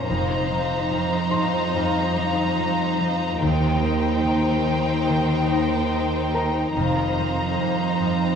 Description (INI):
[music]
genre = cinematic, suspense film score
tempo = 72 BPM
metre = 4/4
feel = straight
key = unclear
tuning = A4 = 442 Hz
[part]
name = rich studio violin section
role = melody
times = 0.0-8.4 s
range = G5 to Bb5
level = -28 LUFS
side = right 1 dB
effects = none
[part]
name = rich studio violin section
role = second line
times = 0.0-8.4 s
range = Eb4 to C5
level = -26 LUFS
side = left 3 dB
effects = none
[part]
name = concert harp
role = riff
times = 0.0-8.4 s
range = F2 to Eb4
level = -26 LUFS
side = left 4 dB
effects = none
[part]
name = warm studio cello section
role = bass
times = 0.0-8.4 s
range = Eb2 to F2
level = -25 LUFS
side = right 4 dB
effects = none
[part]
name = bright baby grand piano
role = texture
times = 0.0-8.4 s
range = Bb4 to Ab6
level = -33 LUFS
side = equal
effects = none
[part]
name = rich studio double bass section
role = bass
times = 0.1-7.5 s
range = F1 to Eb2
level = -28 LUFS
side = right 4 dB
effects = none
[sound]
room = wet recital hall reverb, RT60 1.6 s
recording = worn, warbling old tape, cassette tape, warbly pitch drift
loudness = -20 LUFS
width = side -7 dB against mid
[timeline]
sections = 0.0-8.4 A section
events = none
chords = 0.1 F7sus4; 3.4 Cm/Eb; 6.7 F7sus4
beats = | 0.08 0.92 1.75 2.58 | 3.42 4.25 5.08 5.92 | 6.75 7.58